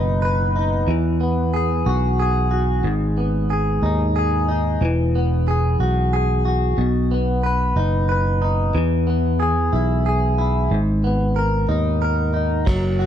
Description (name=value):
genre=six-eight pop ballad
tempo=61 BPM (dotted quarters)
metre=6/8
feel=straight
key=unclear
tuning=A4 = 440 Hz
part: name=direct-recorded clean electric guitar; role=accompaniment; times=0.0-13.1 s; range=G#2 to B4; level=-21 LUFS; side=equal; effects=double-tracked left and right
part: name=sustaining fretless electric bass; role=bass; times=0.0-13.1 s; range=E1 to E2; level=-20 LUFS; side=equal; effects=none
part: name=vintage brush drum kit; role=drums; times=12.7-13.1 s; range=crash cymbal, hi-hat, kick drum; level=-22 LUFS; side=equal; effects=none
room=light reverb, studio reverb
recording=dark, warm production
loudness=-17 LUFS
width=side -10 dB against mid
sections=0.0-12.7 A section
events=none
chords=0.0 B; 0.9 Eadd9; 2.8 G#m; 4.8 Eadd9; 6.8 B; 8.7 E; 10.7 G#madd9